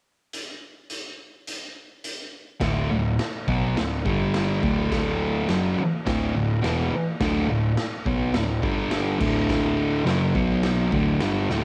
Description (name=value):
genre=garage rock duo or trio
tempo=105 BPM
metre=4/4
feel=straight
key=D major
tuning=A4 = 440 Hz
part: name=raw garage drum kit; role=drums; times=0.3-11.6 s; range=crash cymbal, hi-hat, kick drum, snare drum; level=-32 LUFS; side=equal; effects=cassette tape
part: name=thick fuzz guitar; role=riff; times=2.6-11.6 s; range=D2 to B3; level=-25 LUFS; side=equal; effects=distortion, cassette tape
part: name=hollow-body short-scale picked electric bass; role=bass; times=2.6-11.6 s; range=D1 to B1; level=-34 LUFS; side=equal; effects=none
room=light reverb, small room ambience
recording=home recording on cassette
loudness=-24 LUFS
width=mono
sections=0.3-2.6 A section; 2.6-11.6 B section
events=drum fill 11.5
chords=0.3 N.C.; 2.6 D; 4.1 G5; 4.6 D; 8.6 G5; 9.2 D; 10.3 B5; 10.9 D5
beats=| 0.34 0.91 1.48 2.05 | 2.62 3.20 3.77 4.34 | 4.91 5.48 6.05 6.63 | 7.20 7.77 8.34 8.91 | 9.49 10.06 10.63 11.20